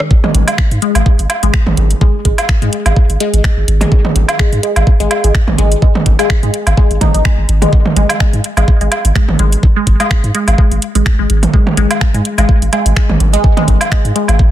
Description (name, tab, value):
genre	minimal techno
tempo	126 BPM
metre	4/4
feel	swing 55% on 16ths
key	unclear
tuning	A4 = 440 Hz
part	resonant blip pluck	riff	0.0-14.2 s	D#3 to D#4	-18 LUFS	left 1 dB	phaser, sidechain pumping, tape echo
part	garage drum kit	drums	0.0-14.4 s	finger snaps, hi-hat, rim click	-20 LUFS	right 1 dB	soft clipping on snare
part	electronic kick drum	drums	0.1-14.5 s	none	-11 LUFS	equal	none
part	electronic toms and woodblock	percussion	0.2-14.4 s	none	-17 LUFS	right 2 dB	none
part	punchy sub bass	bass	0.3-14.5 s	G#1 to G#2	-12 LUFS	equal	sidechain pumping
room	digital ambience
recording	dense, heavily limited modern master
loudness	-9 LUFS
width	side -12 dB against mid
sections	0.1-14.5 A section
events	drop 0.1-14.5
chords	0.1 G#5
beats	| 0.11 0.58 1.06 1.54 | 2.01 2.49 2.96 3.44 | 3.92 4.39 4.87 5.34 | 5.82 6.30 6.77 7.25 | 7.73 8.20 8.68 9.15 | 9.63 10.11 10.58 11.06 | 11.54 12.01 12.49 12.96 | 13.44 13.92 14.39